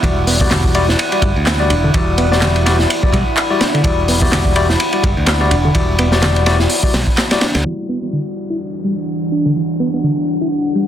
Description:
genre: breakbeat, breaks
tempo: 126 BPM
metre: 4/4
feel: swing 57% on 16ths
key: unclear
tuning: A4 = 440 Hz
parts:
  - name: deep dark ambient pad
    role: sustained chords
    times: 0.0-10.9 s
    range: E3 to B5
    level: -21 LUFS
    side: equal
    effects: chorus, built-in reverb, sidechain pumping
  - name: reed electric piano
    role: riff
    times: 0.0-10.8 s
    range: D3 to E4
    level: -21 LUFS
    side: equal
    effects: low-pass filter, tape echo
  - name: overdriven tine electric piano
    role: stabs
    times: 0.0-10.9 s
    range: G3 to D5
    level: -20 LUFS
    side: left 4 dB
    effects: low-pass filter, tape echo
  - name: modern bright picked electric bass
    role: bass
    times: 0.0-7.6 s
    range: E1 to D2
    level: -17 LUFS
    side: equal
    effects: none
  - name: crunchy breakbeat drum kit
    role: drums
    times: 0.0-7.6 s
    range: hi-hat, kick drum, ride cymbal, snare drum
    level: -16 LUFS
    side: equal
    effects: none
  - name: electronic handclaps and shaker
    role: drums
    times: 0.5-10.9 s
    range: none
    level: -23 LUFS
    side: equal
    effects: low-pass filter on snare, low-pass filter on perc
  - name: downlifter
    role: sound effects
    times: 7.9-10.9 s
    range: none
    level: -36 LUFS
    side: right 3 dB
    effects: none
room: light reverb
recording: dense, heavily limited modern master, low-pass filter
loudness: -13 LUFS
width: side -10 dB against mid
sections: 0.0-7.7 A section; 7.7-10.9 B section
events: filter sweep on reed electric piano 7.7-10.9; filter sweep on tine electric piano 7.7-10.9; filter sweep 7.7-10.9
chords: 0.0 Em9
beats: | 0.04 0.51 0.99 1.46 | 1.94 2.42 2.89 3.37 | 3.85 4.32 4.80 5.27 | 5.75 6.23 6.70 7.18 | 7.65 8.13 8.61 9.08 | 9.56 10.04 10.51

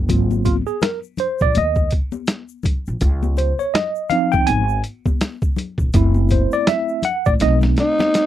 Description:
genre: hip hop, jazz-hop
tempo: 82 BPM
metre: 4/4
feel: swing 60% on 16ths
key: unclear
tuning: A4 = 440 Hz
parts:
  - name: upright bass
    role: bass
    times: 0.0-7.7 s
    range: D#1 to D#2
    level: -19 LUFS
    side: equal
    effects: none
  - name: tine electric piano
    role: accompaniment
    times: 0.1-8.3 s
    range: E#3 to G#5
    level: -19 LUFS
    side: right 1 dB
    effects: medium stereo tremolo
  - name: boom bap sampler-style drum kit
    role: drums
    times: 0.1-8.3 s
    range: hi-hat, kick drum, snare drum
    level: -19 LUFS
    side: equal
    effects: none
  - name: egg shaker and congas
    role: percussion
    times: 0.1-8.3 s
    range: none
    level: -30 LUFS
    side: left 7 dB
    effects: none
  - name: growling tenor saxophone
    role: melody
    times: 7.8-8.3 s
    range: D#4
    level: -16 LUFS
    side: equal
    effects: none
room: little or no reverb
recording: dry, close 1970s-style studio recording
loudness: -16 LUFS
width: side -12 dB against mid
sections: 0.0-8.3 A section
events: tine electric piano solo 0.0-8.3; drum fill 7.4-8.3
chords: 0.1 G#13; 3.0 C#maj7; 5.9 F#m7b5; 7.4 B7b9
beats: | 0.09 0.82 1.55 2.29 | 3.02 3.75 4.48 5.21 | 5.94 6.67 7.41 8.14

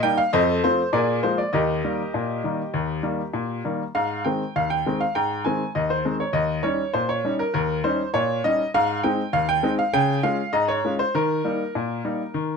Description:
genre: ragtime piano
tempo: 100 BPM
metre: 2/4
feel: straight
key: Eb major, Ab major from 4.0 s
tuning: A4 = 440 Hz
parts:
  - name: bright upright piano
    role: solo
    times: 0.0-12.6 s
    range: Eb2 to Ab5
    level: -21 LUFS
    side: left 1 dB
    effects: none
room: light reverb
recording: close, detailed microphones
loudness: -21 LUFS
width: side -5 dB against mid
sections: 0.0-4.0 A section; 4.0-12.6 B section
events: none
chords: 0.3 F7; 0.9 Bb7; 1.5 Eb; 4.0 Ab; 6.3 Eb7; 8.7 Ab; 9.9 Db; 11.1 Eb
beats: | 0.33 0.93 | 1.53 2.14 | 2.74 3.35 | 3.95 4.55 | 5.15 5.75 | 6.35 6.94 | 7.54 8.14 | 8.73 9.33 | 9.93 10.53 | 11.13 11.73 | 12.34

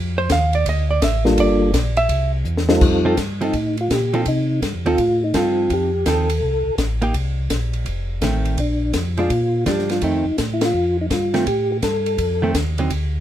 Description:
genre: soul jazz organ trio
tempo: 166 BPM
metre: 4/4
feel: swing 65% on 8ths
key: F mixolydian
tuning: A4 = 443 Hz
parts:
  - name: mellow tonewheel organ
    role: bass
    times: 0.0-13.2 s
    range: F1 to C3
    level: -22 LUFS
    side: equal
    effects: slow rotary speaker
  - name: hollow-body jazz guitar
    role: accompaniment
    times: 0.2-12.9 s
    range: D3 to F5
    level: -22 LUFS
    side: right 3 dB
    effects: none
  - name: compact cocktail drum kit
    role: drums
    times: 0.3-13.0 s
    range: crash cymbal, hi-hat, kick drum, ride cymbal, snare drum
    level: -24 LUFS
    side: left 1 dB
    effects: none
  - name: percussive tonewheel organ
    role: melody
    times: 1.2-12.5 s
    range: G3 to A4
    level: -20 LUFS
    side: equal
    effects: slow rotary speaker, chorus vibrato
room: light reverb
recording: minimal, uncompressed stereo recording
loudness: -17 LUFS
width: side -11 dB against mid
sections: 0.0-2.8 A section; 2.8-13.2 B section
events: hollow-body jazz guitar solo 0.0-2.8; drum fill 2.5-2.8; band accent 10.6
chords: 0.0 Cmadd11; 0.7 D5; 1.4 Gm7; 2.1 C; 2.8 F7; 7.1 Bbsus2; 7.9 F7; 8.6 Bb; 10.0 F7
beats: 0.30 0.66 1.02 | 1.38 1.74 2.10 2.46 | 2.82 3.18 3.54 3.90 | 4.26 4.62 4.98 5.34 | 5.70 6.06 6.42 6.78 | 7.14 7.50 7.86 8.22 | 8.58 8.94 9.30 9.66 | 10.03 10.38 10.75 11.11 | 11.47 11.83 12.19 12.55 | 12.91

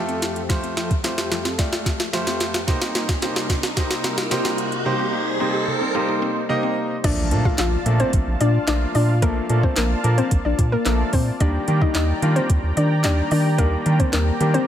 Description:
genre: dance-pop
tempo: 110 BPM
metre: 4/4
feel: straight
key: Bb major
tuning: A4 = 440 Hz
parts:
  - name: clear baby grand piano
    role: accompaniment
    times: 0.0-14.7 s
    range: Eb3 to Eb5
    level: -26 LUFS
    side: right 1 dB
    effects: sidechain pumping
  - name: warm analog pad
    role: sustained chords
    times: 0.0-14.7 s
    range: F2 to Bb5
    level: -29 LUFS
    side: equal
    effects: chorus, sidechain pumping
  - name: riser and impact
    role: sound effects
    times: 0.6-9.2 s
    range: none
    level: -29 LUFS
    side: right 1 dB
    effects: none
  - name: mallet-like synth pluck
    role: arpeggios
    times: 0.1-6.7 s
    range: C3 to G4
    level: -32 LUFS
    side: left 2 dB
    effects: chorus, sidechain pumping, ping-pong delay
  - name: smooth R&B drum kit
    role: drums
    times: 0.1-14.7 s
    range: crash cymbal, handclaps, hi-hat, kick drum, snare drum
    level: -23 LUFS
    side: equal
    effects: none
  - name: hollow square pluck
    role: melody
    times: 7.0-14.7 s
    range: Bb3 to F5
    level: -24 LUFS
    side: left 3 dB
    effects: chorus, sidechain pumping, ping-pong delay
  - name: round analog bass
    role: bass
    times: 7.0-14.6 s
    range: Bb1 to Eb3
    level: -20 LUFS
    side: equal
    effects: sidechain pumping
room: light reverb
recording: none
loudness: -18 LUFS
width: side -10 dB against mid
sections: 0.0-7.0 A section; 7.0-14.7 B section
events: build-up 0.0-7.0; drum fill 0.0-4.9; riser 0.6-7.0; drop 7.0-14.7; impact 7.0-9.2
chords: 0.0 Fadd9; 2.7 Cm7; 7.0 Bbmaj7; 11.4 Ebmaj7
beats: | 0.50 1.04 1.59 2.13 | 2.68 3.22 3.77 4.31 | 4.86 5.41 5.95 6.50 | 7.04 7.59 8.13 8.68 | 9.22 9.77 10.31 10.86 | 11.40 11.95 12.50 13.04 | 13.59 14.13

